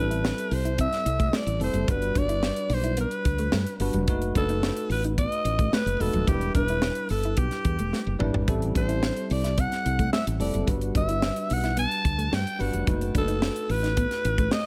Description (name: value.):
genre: polished 1980s jazz-funk pop.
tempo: 109 BPM.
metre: 4/4.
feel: straight.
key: A dorian.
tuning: A4 = 436 Hz.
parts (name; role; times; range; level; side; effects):
raspy alto saxophone; melody; 0.0-14.7 s; G4 to A5; -32 LUFS; equal; none.
bell-like tine electric piano; accompaniment; 0.0-14.7 s; G3 to B4; -34 LUFS; equal; analog chorus.
mellow electric guitar; riff; 0.0-14.6 s; F#3 to E4; -35 LUFS; equal; lush chorus.
woody fretless electric bass; bass; 0.0-14.5 s; D#1 to G2; -30 LUFS; equal; none.
tight funk drum kit; drums; 0.1-14.6 s; hi-hat, kick drum, snare drum, toms; -31 LUFS; equal; none.
room: little or no reverb.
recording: none.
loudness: -26 LUFS.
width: mono.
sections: 0.0-14.7 A section.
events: drum fill 7.9-8.5.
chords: 0.0 Am7; 1.9 Gmaj7; 4.1 B7/F#; 6.3 Em7; 8.5 Am7; 10.7 Gmaj7; 12.9 B7/F#.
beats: 0.24 0.79 1.33 | 1.88 2.43 2.98 3.53 | 4.08 4.63 5.18 5.73 | 6.28 6.83 7.38 7.93 | 8.48 9.03 9.57 10.12 | 10.68 11.22 11.77 12.32 | 12.87 13.42 13.97 14.52.